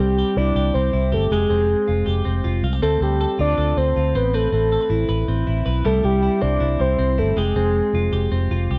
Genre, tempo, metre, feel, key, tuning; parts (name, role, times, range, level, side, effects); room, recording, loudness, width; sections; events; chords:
jangly indie pop; 158 BPM; 4/4; straight; C major; A4 = 440 Hz
soft octave-layered synth lead; melody; 0.0-8.3 s; G4 to D5; -23 LUFS; equal; chorus
twelve-string electric guitar; arpeggios; 0.0-8.8 s; G3 to B4; -27 LUFS; equal
vintage muted fingered electric bass; bass; 0.0-8.8 s; F1 to D2; -23 LUFS; equal
light reverb; dry, close 1970s-style studio recording; -20 LUFS; mono
0.0-8.8 A section
0.0 C; 1.3 Fmadd9; 2.8 Dm7; 4.2 Amadd9; 5.9 C; 7.4 Fmadd9